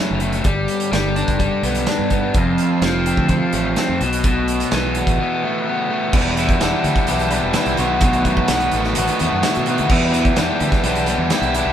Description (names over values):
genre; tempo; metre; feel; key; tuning
indie rock; 127 BPM; 4/4; straight; unclear; A4 = 440 Hz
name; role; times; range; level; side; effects
overdriven electric guitar; riff; 0.0-11.7 s; E2 to F#4; -19 LUFS; left 2 dB; none
overdriven semi-hollow guitar; riff; 0.0-11.7 s; E2 to G4; -24 LUFS; right 6 dB; none
growling fingered electric bass; bass; 0.1-11.7 s; E1 to B2; -23 LUFS; equal; overdrive
loose indie drum kit; drums; 0.2-11.7 s; crash cymbal, hi-hat, kick drum, snare drum; -21 LUFS; right 1 dB; none
combo organ; sustained chords; 2.4-11.7 s; E4 to C6; -33 LUFS; right 3 dB; none
room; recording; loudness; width
moderate stone room reverb, RT60 1.0 s; band playing live in one room; -16 LUFS; side -9 dB against mid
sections
0.0-6.1 A section; 6.1-11.7 B section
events
break 5.2-6.1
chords
0.5 G; 2.4 F; 4.0 B7sus4; 6.1 Em7; 7.8 B7sus4; 9.9 Em7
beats
| 0.46 0.93 1.41 1.88 | 2.36 2.83 3.30 3.78 | 4.25 4.72 5.19 5.67 | 6.14 6.61 7.08 7.55 | 8.03 8.50 8.97 9.44 | 9.91 10.38 10.85 11.32